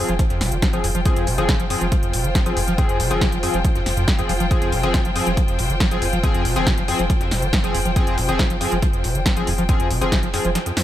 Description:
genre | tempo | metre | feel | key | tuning
driving peak-time techno | 139 BPM | 4/4 | straight | F minor | A4 = 440 Hz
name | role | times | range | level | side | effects
overdriven acid bass | riff | 0.0-10.8 s | F2 to F3 | -25 LUFS | equal | distortion, wide subtle chorus, sidechain pumping, tape echo
sync-sweep polysynth | stabs | 0.0-10.5 s | F3 to Ab4 | -25 LUFS | left 2 dB | chorus, sidechain pumping, tape echo
rich studio string section | texture | 0.0-10.8 s | F4 to G5 | -27 LUFS | left 1 dB | sidechain pumping
saturated sub bass | bass | 0.1-10.6 s | F1 | -26 LUFS | equal | overdrive, sidechain pumping, low-pass filter
techno drum kit | drums | 0.1-10.8 s | hi-hat, snare drum | -26 LUFS | equal | none
dusty soul sampler-style drum kit | drums | 0.2-10.8 s | hi-hat, snare drum | -34 LUFS | equal | none
electronic kick drum | drums | 0.2-10.2 s | none | -20 LUFS | equal | none
room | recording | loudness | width
light reverb, digital ambience | none | -17 LUFS | side -12 dB against mid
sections
0.0-10.8 A section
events
none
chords
0.0 Fm

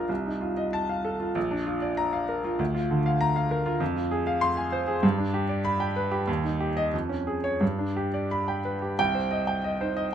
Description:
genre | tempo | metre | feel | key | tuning
classical, virtuoso piano study | 85-100 BPM | 2/4 | rubato | Bb major, C minor from 3.8 s | A4 = 440 Hz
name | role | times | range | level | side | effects
clear baby grand piano | solo | 0.0-10.1 s | Bb1 to C6 | -24 LUFS | equal | none
room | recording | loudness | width
light reverb | close, detailed microphones | -24 LUFS | side -9 dB against mid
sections
0.0-9.0 A section; 9.0-10.1 B section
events
none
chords
0.1 F7/C; 1.4 Bb; 2.6 Bb/D; 3.8 Fm; 5.0 G; 6.3 Eb; 6.9 Db/F; 7.6 G; 9.0 Cm

